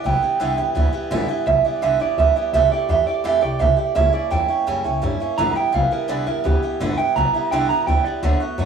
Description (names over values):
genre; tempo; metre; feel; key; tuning
rockabilly; 169 BPM; 4/4; straight; G major; A4 = 440 Hz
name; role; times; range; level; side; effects
electric guitar through a small old amp; melody; 0.0-8.2 s; G4 to Bb5; -19 LUFS; right 5 dB; slapback echo
picked swing-style acoustic guitar; accompaniment; 0.0-8.7 s; G2 to G4; -23 LUFS; right 3 dB; none
upright bass; bass; 0.0-8.7 s; G1 to G2; -23 LUFS; equal; none
room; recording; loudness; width
moderate studio reverb, RT60 0.7 s; rough rehearsal-room recording, small room ambience; -17 LUFS; side -6 dB against mid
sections
0.0-8.7 A section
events
none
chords
0.0 G6; 2.5 C6; 4.0 C#dim7; 5.4 G6